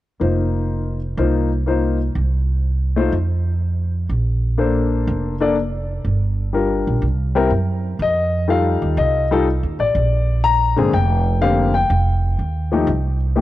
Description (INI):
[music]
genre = jazz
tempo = 123 BPM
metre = 4/4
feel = swing 68% on 8ths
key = F mixolydian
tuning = A4 = 441 Hz
[part]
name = clear baby grand piano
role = melody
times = 0.2-13.4 s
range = D3 to Bb5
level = -19 LUFS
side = left 4 dB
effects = cassette tape
[part]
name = upright bass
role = bass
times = 0.2-13.4 s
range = F1 to Gb2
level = -19 LUFS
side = right 1 dB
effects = none
[sound]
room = little or no reverb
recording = home recording on cassette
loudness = -16 LUFS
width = side -15 dB against mid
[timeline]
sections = 0.2-8.0 A section; 8.0-13.4 B section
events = none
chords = 0.2 F7sus4; 2.2 N.C.; 4.1 Bbmaj9; 6.1 Gm7; 7.0 N.C.; 8.0 F9; 10.0 Bbadd9; 11.9 F7sus2